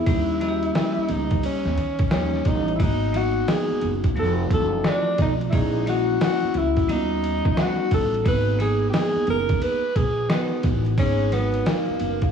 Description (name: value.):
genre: hip hop, jazz-hop.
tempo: 88 BPM.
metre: 4/4.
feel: swing 64% on 16ths.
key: G# minor.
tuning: A4 = 440 Hz.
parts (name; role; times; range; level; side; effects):
mellow tenor saxophone; melody; 0.0-12.3 s; A#3 to B4; -24 LUFS; left 1 dB; cassette tape, tape echo.
vibraphone with hard mallets; accompaniment; 0.0-12.3 s; F3 to D#5; -27 LUFS; left 1 dB; none.
upright bass; bass; 0.0-12.3 s; F1 to D#3; -26 LUFS; right 1 dB; none.
trip hop sampler-style drum kit; drums; 0.1-12.3 s; hi-hat, kick drum, ride cymbal, snare drum; -25 LUFS; equal; none.
room: light reverb, studio reverb.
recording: home recording on cassette, vinyl crackle, studio ambience.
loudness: -20 LUFS.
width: side -7 dB against mid.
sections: 0.0-12.3 A section.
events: none.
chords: 0.1 D#7; 2.8 G#m9; 4.2 F7b9; 5.5 A#m7b5; 6.9 D#7alt; 8.3 G#m9.